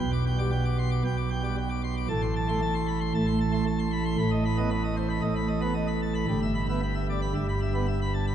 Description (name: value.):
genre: classical, organ toccata.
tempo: 114 BPM.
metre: 4/4.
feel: straight.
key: E minor.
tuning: A4 = 441 Hz.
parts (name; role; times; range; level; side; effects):
pipe organ, plenum; solo; 0.0-8.3 s; G1 to D6; -25 LUFS; right 1 dB; none.
room: wet church reverb, RT60 3.6 s.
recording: dark, warm production.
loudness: -25 LUFS.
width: side -10 dB against mid.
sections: 0.0-8.3 A section.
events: none.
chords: 0.0 G/B; 2.1 Amadd9; 4.2 B7/A; 6.3 Em/G.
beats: | 0.00 0.52 1.04 1.57 | 2.09 2.61 3.13 3.66 | 4.18 4.71 5.23 5.75 | 6.28 6.81 7.33 7.87.